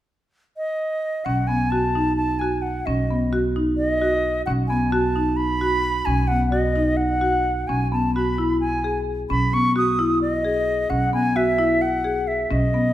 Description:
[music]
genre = contemporary instrumental, chamber music in an uneven meter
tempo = 261 BPM (eighths)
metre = 7/8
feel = straight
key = B mixolydian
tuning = A4 = 441 Hz
[part]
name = silver concert flute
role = melody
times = 0.6-12.9 s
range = D#5 to D#6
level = -23 LUFS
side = equal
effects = none
[part]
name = marimba with medium hard mallets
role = arpeggios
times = 1.3-12.9 s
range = B3 to G#4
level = -22 LUFS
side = equal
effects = none
[part]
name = upright bass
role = bass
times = 1.3-12.9 s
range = B1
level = -26 LUFS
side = equal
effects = none
[sound]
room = wet recital hall reverb, RT60 1.5 s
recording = minimal, uncompressed stereo recording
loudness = -19 LUFS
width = side -13 dB against mid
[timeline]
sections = 0.0-1.3 A section; 1.3-12.9 B section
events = none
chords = 0.0 N.C.; 1.3 B; 7.7 E/B

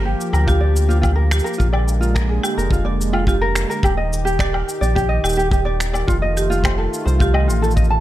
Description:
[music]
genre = folktronica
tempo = 107 BPM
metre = 4/4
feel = straight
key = unclear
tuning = A4 = 440 Hz
[part]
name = warm analog pad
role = sustained chords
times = 0.0-8.0 s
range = D3 to G4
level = -26 LUFS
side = equal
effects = chorus, tremolo
[part]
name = ukulele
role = arpeggios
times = 0.0-8.0 s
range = F4 to A5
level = -23 LUFS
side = right 1 dB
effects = ping-pong delay
[part]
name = round analog bass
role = bass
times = 0.0-8.0 s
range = Eb1 to D2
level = -18 LUFS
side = equal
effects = none
[part]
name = electronic cabasa, woodblock and finger snaps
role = drums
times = 0.2-7.9 s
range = none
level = -27 LUFS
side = left 2 dB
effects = none
[part]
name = marimba with hard mallets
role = second line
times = 0.5-7.5 s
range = G4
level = -27 LUFS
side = right 3 dB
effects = ping-pong delay
[part]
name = kick drum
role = drums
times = 0.5-7.9 s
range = none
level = -20 LUFS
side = equal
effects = none
[sound]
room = little or no reverb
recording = none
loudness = -16 LUFS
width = side -14 dB against mid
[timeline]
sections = 0.0-8.0 A section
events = none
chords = 0.0 Gm7; 1.6 Bb7; 3.8 Ebmaj7; 6.1 F7

